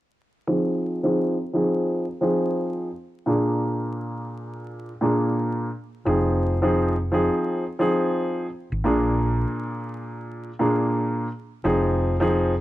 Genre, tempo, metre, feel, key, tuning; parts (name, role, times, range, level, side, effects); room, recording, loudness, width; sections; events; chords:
hip hop; 86 BPM; 4/4; swing 61% on 16ths; F dorian; A4 = 441 Hz
dark baby grand piano; accompaniment; 0.5-12.5 s; Bb2 to Ab4; -22 LUFS; equal; cassette tape, high-pass filter, low-pass filter
hollow-body short-scale fingered electric bass; bass; 6.1-12.6 s; F1 to Bb1; -24 LUFS; equal; tube saturation
light reverb, small room ambience; dry, gritty hardware recording, vinyl crackle; -21 LUFS; side -15 dB against mid
0.5-11.6 A section
filter sweep on grand piano 0.5-11.6
0.5 Fm7; 3.3 Bb7; 6.1 Fm7; 8.9 Bb7; 11.6 Fm7